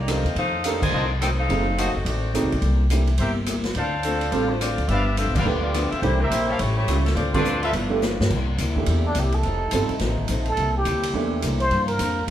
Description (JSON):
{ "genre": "jazz, big band swing", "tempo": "211 BPM", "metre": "4/4", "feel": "swing 62% on 8ths", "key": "C mixolydian", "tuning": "A4 = 440 Hz", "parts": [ { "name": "clear saxophone section", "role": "melody", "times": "0.0-8.2 s", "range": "F3 to Ab5", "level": "-27 LUFS", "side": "left 1 dB", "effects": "none" }, { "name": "upright bass", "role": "bass", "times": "0.0-12.3 s", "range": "F1 to G2", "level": "-24 LUFS", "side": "equal", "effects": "none" }, { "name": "archtop guitar, miked and amplified", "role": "accompaniment", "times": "0.1-12.3 s", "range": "F2 to A4", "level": "-32 LUFS", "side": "left 4 dB", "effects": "none" }, { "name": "warm grand piano", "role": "accompaniment", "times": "0.1-11.6 s", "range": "E3 to B4", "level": "-28 LUFS", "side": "right 5 dB", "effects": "none" }, { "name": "swinging big-band drum kit", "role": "drums", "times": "0.1-12.3 s", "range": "crash cymbal, hi-hat, kick drum, ride cymbal, rim click, snare drum", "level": "-29 LUFS", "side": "equal", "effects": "none" }, { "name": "clear trumpet section", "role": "stabs", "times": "0.9-7.7 s", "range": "F4 to F5", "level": "-28 LUFS", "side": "equal", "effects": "none" }, { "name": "bright trombone section", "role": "sustained chords", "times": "8.3-12.3 s", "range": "Bb2 to F4", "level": "-35 LUFS", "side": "equal", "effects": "none" }, { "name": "trumpet with plunger mute", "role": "melody", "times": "9.1-12.2 s", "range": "D4 to C5", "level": "-25 LUFS", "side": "right 1 dB", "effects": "none" } ], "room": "moderate large studio reverb, RT60 1.3 s", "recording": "band playing live in one room", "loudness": "-20 LUFS", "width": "side -11 dB against mid", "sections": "0.0-8.3 A section; 8.3-12.3 B section", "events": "band accent 0.8, 5.3, 7.3; drum fill 8.0; muted trumpet solo 8.3-12.3", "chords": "0.0 F7; 1.5 F#dim7; 2.6 C7; 3.8 Dm7; 4.9 G7; 6.0 C7; 6.6 A7b13; 7.2 Dm7; 7.7 G13; 8.3 C7; 9.4 F7; 10.6 C7; 11.7 Gm7" }